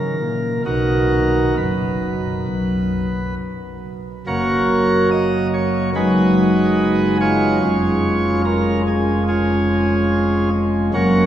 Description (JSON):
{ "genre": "classical, chorale-style piece for pipe organ", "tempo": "65-74 BPM", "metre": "4/4", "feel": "rubato", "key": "B major", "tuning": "A4 = 440 Hz", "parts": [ { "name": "chamber organ, principal chorus", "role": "solo", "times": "0.0-11.3 s", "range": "E#1 to D#5", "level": "-16 LUFS", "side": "equal", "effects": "none" } ], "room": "wet cathedral reverb, RT60 7.0 s", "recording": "heard from further back in the room, studio reverb", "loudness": "-16 LUFS", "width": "side -11 dB against mid", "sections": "0.0-4.3 A section; 4.3-11.3 B section", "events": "none", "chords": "0.0 F# (rootless); 0.7 B; 4.3 F#; 6.0 G#m7/F#; 7.6 C#/E#" }